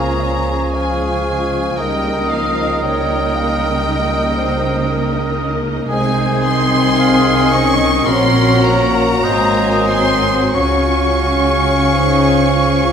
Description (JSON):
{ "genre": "classical", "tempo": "43-59 BPM", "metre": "4/4", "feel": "rubato", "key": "Db major", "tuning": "A4 = 440 Hz", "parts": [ { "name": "rich studio violin section", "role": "melody", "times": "0.0-12.9 s", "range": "F5 to Db6", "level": "-21 LUFS", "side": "left 1 dB", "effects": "none" }, { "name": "mellow hollow concert flute", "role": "second line", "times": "0.0-12.9 s", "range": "Db6 to Eb6", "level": "-23 LUFS", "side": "equal", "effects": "none" }, { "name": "rich studio violin section", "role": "second line", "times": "0.0-12.9 s", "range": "Ab4 to Ab5", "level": "-25 LUFS", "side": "left 1 dB", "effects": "none" }, { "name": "warm clarinet", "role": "second line", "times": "0.0-12.9 s", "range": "Bb4 to F5", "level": "-25 LUFS", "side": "left 1 dB", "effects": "none" }, { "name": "warm oboe", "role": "second line", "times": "0.0-12.9 s", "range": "Ab4 to Db5", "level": "-25 LUFS", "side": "right 1 dB", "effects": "none" }, { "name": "mellow bassoon", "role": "accompaniment", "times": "0.0-12.9 s", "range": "Eb3 to Gb3", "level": "-22 LUFS", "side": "right 2 dB", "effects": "none" }, { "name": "warm studio viola section", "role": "accompaniment", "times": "0.0-12.9 s", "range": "F3 to Gb4", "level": "-23 LUFS", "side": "equal", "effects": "none" }, { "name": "mellow French horn section", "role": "sustained chords", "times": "0.0-12.9 s", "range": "F3 to Db4", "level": "-20 LUFS", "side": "left 4 dB", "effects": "none" }, { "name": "rich studio double bass section", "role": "bass", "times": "0.0-12.9 s", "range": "Ab1 to Db2", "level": "-22 LUFS", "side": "right 3 dB", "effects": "none" }, { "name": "warm studio cello section", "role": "bass", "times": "0.0-12.9 s", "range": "Ab2 to Db3", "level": "-22 LUFS", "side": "right 4 dB", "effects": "none" } ], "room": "wet scoring stage reverb, RT60 1.7 s", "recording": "none", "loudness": "-13 LUFS", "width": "side -7 dB against mid", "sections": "0.0-12.9 A section", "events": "none", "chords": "0.0 Db; 1.8 Eb7/Db; 5.9 Ab/C; 8.1 Gb/Bb; 9.2 Ab9; 10.5 Db" }